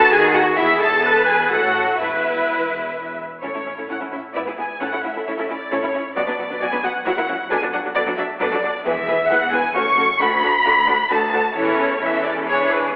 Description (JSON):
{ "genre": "quick classical-period movement for string orchestra", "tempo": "132 BPM", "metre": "3/4", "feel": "straight", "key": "A major", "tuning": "A4 = 440 Hz", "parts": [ { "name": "dark studio violin section", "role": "melody", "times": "0.0-12.9 s", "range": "B4 to C#6", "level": "-19 LUFS", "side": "equal", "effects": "none" }, { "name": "warm studio violin section", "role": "second line", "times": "0.0-12.9 s", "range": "B3 to D5", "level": "-22 LUFS", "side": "equal", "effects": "none" }, { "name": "rich studio viola section", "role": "accompaniment", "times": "0.0-12.9 s", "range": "E3 to B4", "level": "-24 LUFS", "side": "equal", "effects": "none" }, { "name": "warm studio cello section", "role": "bass", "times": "0.0-12.9 s", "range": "D2 to D#3", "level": "-29 LUFS", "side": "equal", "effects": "none" }, { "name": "warm studio double bass section", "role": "bass", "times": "0.0-12.9 s", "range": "E1 to D#2", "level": "-35 LUFS", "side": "equal", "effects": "none" } ], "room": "wet recital hall reverb, RT60 1.8 s", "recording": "recorded in a church or concert hall, telephone sound", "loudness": "-16 LUFS", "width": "side -26 dB against mid", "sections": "0.0-3.4 A section; 3.4-13.0 B section", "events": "none", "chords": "0.1 D#madd11; 0.6 E; 1.5 F#m/A; 2.0 E5; 3.4 A; 4.4 E/G#; 4.8 A; 6.2 Bm; 7.1 F#7/A#; 7.5 Bm; 8.9 E; 9.8 F#m; 10.2 D; 11.6 A/E; 12.5 E7" }